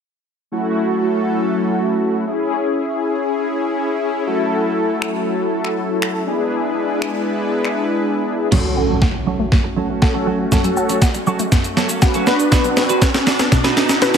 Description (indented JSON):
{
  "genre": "dance-pop",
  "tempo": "120 BPM",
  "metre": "4/4",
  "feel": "straight",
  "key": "F# minor",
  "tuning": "A4 = 441 Hz",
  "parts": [
    { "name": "mellow synth brass", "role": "accompaniment", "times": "0.5-14.2 s", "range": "A3 to B4", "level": "-19 LUFS", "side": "left 1 dB", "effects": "chorus, sidechain pumping, low-pass filter" },
    { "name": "soft supersaw", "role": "sustained chords", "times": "0.5-14.2 s", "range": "F#3 to B4", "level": "-23 LUFS", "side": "equal", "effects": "sidechain pumping, low-pass filter" },
    { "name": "crisp 8-bit digital drum machine", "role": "drums", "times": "5.0-14.2 s", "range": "crash cymbal, finger snaps, hi-hat, kick drum, shaker, snare drum", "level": "-16 LUFS", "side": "equal", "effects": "overdrive" },
    { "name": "wide unison pluck", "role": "arpeggios", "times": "8.5-14.1 s", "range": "F#2 to C#6", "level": "-25 LUFS", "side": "left 3 dB", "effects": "auto-pan, sidechain pumping, low-pass filter, digital delay" },
    { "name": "twelve-string electric guitar", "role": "riff", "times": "8.5-14.2 s", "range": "F#3 to B4", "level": "-22 LUFS", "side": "right 7 dB", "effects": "lush chorus, low-pass filter" },
    { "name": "riser and impact", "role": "sound effects", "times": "8.5-14.2 s", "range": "none", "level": "-24 LUFS", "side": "equal", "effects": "none" }
  ],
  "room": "light reverb",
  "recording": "none",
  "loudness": "-15 LUFS",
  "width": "side -7 dB against mid",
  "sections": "0.5-8.5 A section; 8.5-14.2 B section",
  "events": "build-up 8.5-14.2; drum fill 8.5-14.2; impact 8.5-10.5; riser 8.5-14.2; filter sweep 8.5-14.2",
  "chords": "0.5 F#m7; 2.3 C#m; 4.3 F#m7; 6.3 E7; 8.5 F#m; 12.3 Bm",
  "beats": "| 0.52 1.02 1.52 2.02 | 2.52 3.02 3.52 4.02 | 4.52 5.02 5.52 6.02 | 6.52 7.02 7.52 8.02 | 8.52 9.02 9.52 10.02 | 10.52 11.02 11.52 12.02 | 12.52 13.02 13.52 14.02"
}